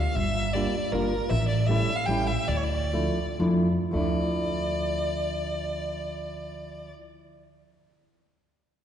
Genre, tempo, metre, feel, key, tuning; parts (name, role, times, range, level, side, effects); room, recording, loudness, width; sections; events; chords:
musette waltz; 107-158 BPM; 3/4; straight; D harmonic minor; A4 = 444 Hz
rich violin; melody; 0.0-6.9 s; Bb4 to G5; -30 LUFS; equal
upright bass; bass; 0.0-6.9 s; G1 to F2; -28 LUFS; equal
hollow-body jazz guitar; accompaniment; 0.5-6.9 s; F3 to F4; -30 LUFS; equal
wet concert hall reverb, RT60 2.2 s; heard from further back in the room, nothing above 10.4 kHz; -24 LUFS; side -9 dB against mid
0.0-3.9 A section; 3.9-7.2 B section
slowing down 1.3-3.9
0.2 Gm7; 1.3 A7; 2.5 Dmadd9